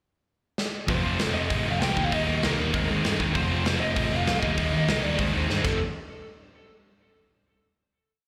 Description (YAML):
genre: punk rock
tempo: 196 BPM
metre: 4/4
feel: straight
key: F mixolydian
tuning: A4 = 442 Hz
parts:
  - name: big rock drum kit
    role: drums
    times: 0.6-5.7 s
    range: crash cymbal, hi-hat, kick drum, snare drum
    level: -32 LUFS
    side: equal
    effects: none
  - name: lead guitar through a small cranked amp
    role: melody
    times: 0.9-5.8 s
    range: A4 to G5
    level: -34 LUFS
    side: equal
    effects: overdrive, slapback echo, delay
  - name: sludgy distorted guitar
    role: riff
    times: 0.9-5.8 s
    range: F2 to Eb4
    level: -33 LUFS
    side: equal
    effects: overdrive
  - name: sludgy distorted guitar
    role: riff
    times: 0.9-5.8 s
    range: F2 to F4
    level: -32 LUFS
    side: equal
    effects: overdrive, slapback echo
  - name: thick fuzz guitar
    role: riff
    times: 0.9-5.8 s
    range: F2 to F4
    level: -36 LUFS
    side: equal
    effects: none
  - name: picked electric bass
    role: bass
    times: 0.9-5.8 s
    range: F1 to G2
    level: -31 LUFS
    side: equal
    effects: none
room: light reverb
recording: live gig heard through the venue's PA, club reverb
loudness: -25 LUFS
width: mono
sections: 0.0-0.9 pickup bar; 0.9-5.8 chorus; 5.8-7.0 final hit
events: drum fill 0.6-0.9, 5.5-5.8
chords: 0.0 N.C.; 0.9 F; 2.0 Eb; 2.7 Ab/Eb; 3.4 F; 4.4 Eb; 5.2 Ab/Eb; 5.6 F; 5.8 N.C.